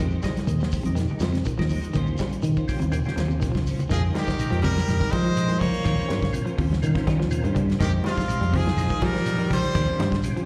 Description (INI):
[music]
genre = afrobeat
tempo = 123 BPM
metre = 4/4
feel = straight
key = F minor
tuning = A4 = 441 Hz
[part]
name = percussive tonewheel organ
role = accompaniment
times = 0.0-10.5 s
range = Ab3 to Bb4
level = -38 LUFS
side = equal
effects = slow rotary speaker, chorus vibrato, slapback echo
[part]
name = electric guitar at the edge of break-up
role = arpeggios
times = 0.0-10.4 s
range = C3 to G3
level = -34 LUFS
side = equal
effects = none
[part]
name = clean electric guitar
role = stabs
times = 0.0-10.5 s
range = G3 to C5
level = -39 LUFS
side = equal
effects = ensemble chorus, slapback echo
[part]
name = fingered electric bass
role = bass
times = 0.0-10.2 s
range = Db2 to F3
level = -26 LUFS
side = equal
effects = none
[part]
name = damped 70s drum kit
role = drums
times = 0.0-10.5 s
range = hi-hat, kick drum, snare drum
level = -31 LUFS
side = equal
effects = none
[part]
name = congas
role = percussion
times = 0.0-10.2 s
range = none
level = -34 LUFS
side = equal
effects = none
[part]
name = shekere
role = percussion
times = 0.1-10.4 s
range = none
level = -35 LUFS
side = equal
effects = none
[part]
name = brilliant trumpet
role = melody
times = 3.9-10.2 s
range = F4 to Db5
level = -31 LUFS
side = equal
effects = slapback echo
[part]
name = raspy tenor saxophone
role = second line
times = 3.9-10.2 s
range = C3 to Bb3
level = -34 LUFS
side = equal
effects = none
[sound]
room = studio reverb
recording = live gig heard through the venue's PA, recital hall reverb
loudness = -24 LUFS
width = mono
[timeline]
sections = 0.0-3.9 A section; 3.9-10.5 B section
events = drum fill 3.5-3.9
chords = 0.0 Fm9; 1.9 Eb13; 3.9 Fm9; 5.9 Eb13; 7.8 Fm9; 9.8 Eb13